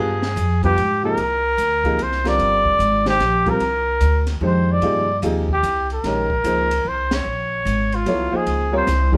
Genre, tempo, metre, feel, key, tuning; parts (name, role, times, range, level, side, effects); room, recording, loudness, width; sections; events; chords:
modal jazz; 148 BPM; 3/4; swing 65% on 8ths; A4 = 441 Hz
breathy trumpet; melody; 0.0-9.1 s; F4 to D5; -22 LUFS; equal
clear upright piano; accompaniment; 0.0-9.2 s; B#2 to Db5; -26 LUFS; equal
upright bass; bass; 0.0-9.2 s; G1 to Ab2; -24 LUFS; equal
compact cocktail drum kit; drums; 0.2-9.2 s; hi-hat, kick drum, ride cymbal, snare drum; -32 LUFS; equal
moderate stone room reverb, RT60 1.0 s; band playing live in one room; -19 LUFS; mono
0.0-1.2 A section; 1.2-9.2 B section
band accent 7.1
0.0 G7b9; 1.2 Cm11; 6.0 Bbm11